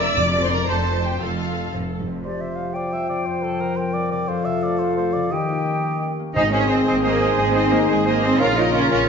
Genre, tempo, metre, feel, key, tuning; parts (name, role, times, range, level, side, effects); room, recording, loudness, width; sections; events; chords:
cinematic; 117 BPM (dotted quarters); 6/8; straight; F major; A4 = 441 Hz
clear symphonic violin section; melody; 0.0-1.7, 6.4-9.1 s; Ab4 to E6; -29 LUFS; left 3 dB
warm symphonic violin section; second line; 0.0-1.7, 6.5-9.1 s; F4 to Bb5; -29 LUFS; left 3 dB
rich symphonic viola section; accompaniment; 0.0-2.0, 6.5-9.1 s; F4 to D5; -25 LUFS; right 2 dB
concert harp; arpeggios; 0.0-9.1 s; F2 to Ab5; -30 LUFS; left 9 dB
rich symphonic cello section; bass; 0.0-2.2, 6.4-9.1 s; F2 to F4; -24 LUFS; right 2 dB
rich symphonic double bass section; bass; 0.0-2.2, 6.4-9.1 s; F1 to Bb1; -28 LUFS; right 5 dB
timpani; percussion; 0.2-0.6, 6.4-6.8 s; F2 to Ab2; -29 LUFS; left 1 dB
clear clarinet; second line; 2.2-9.0 s; G4 to C5; -28 LUFS; left 3 dB
concert flute; second line; 2.2-9.0 s; D5 to Ab5; -28 LUFS; left 1 dB
mellow cor anglais; second line; 2.2-9.0 s; A4 to E5; -29 LUFS; right 2 dB
mellow French horn section; sustained chords; 2.2-9.1 s; Db3 to Eb4; -26 LUFS; left 3 dB
dark trombone section; sustained chords; 6.4-9.1 s; Db3 to C4; -28 LUFS; right 3 dB
warm trumpet section; stabs; 6.4-9.1 s; F4 to Ab4; -24 LUFS; right 4 dB
wet recital hall reverb, RT60 1.7 s; nothing above 7.6 kHz; -18 LUFS; side -6 dB against mid
0.0-2.2 A section; 2.2-6.4 B section; 6.4-9.1 C section
0.2 F; 2.2 Csus2/F; 4.3 F; 5.3 Eb7; 6.4 Ab; 8.4 Bbm